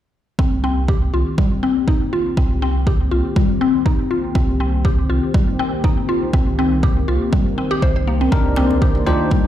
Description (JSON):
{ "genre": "afro house", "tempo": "121 BPM", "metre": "4/4", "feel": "swing 54% on 16ths", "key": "C minor", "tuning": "A4 = 440 Hz", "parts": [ { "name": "warm analog pad", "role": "sustained chords", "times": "0.4-9.5 s", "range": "Eb3 to D5", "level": "-24 LUFS", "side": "left 2 dB", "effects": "chorus, sidechain pumping" }, { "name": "mallet-like synth pluck", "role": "arpeggios", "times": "0.4-9.4 s", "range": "G3 to C5", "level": "-21 LUFS", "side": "left 1 dB", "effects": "chorus, phaser, sidechain pumping, dub echo" }, { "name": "dark detuned saw bass", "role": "bass", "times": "0.4-9.2 s", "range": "C2", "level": "-20 LUFS", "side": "right 1 dB", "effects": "sidechain pumping" }, { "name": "electronic kick drum", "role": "drums", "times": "0.4-9.4 s", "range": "none", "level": "-17 LUFS", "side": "equal", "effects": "overdrive" }, { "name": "bell-like tine electric piano", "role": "stabs", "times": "8.3-9.5 s", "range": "D4 to C5", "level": "-21 LUFS", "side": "left 2 dB", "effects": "sidechain pumping, dub echo" }, { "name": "congas", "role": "percussion", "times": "8.6-9.4 s", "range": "none", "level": "-27 LUFS", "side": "right 2 dB", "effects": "none" }, { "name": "djembe", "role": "percussion", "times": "8.6-9.2 s", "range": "none", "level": "-26 LUFS", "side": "left 3 dB", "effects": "none" } ], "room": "light reverb", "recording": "played on a big sound system in a bare room, large studio reverb", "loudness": "-15 LUFS", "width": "side -12 dB against mid", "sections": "0.4-9.5 A section", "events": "filter sweep on synth pluck 0.4-9.5; filter sweep on analog synth pad 0.4-9.5", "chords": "0.4 Cm7", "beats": "| 0.39 0.88 1.38 1.88 | 2.37 2.87 3.36 3.86 | 4.36 4.85 5.35 5.84 | 6.34 6.83 7.33 7.83 | 8.32 8.82 9.31" }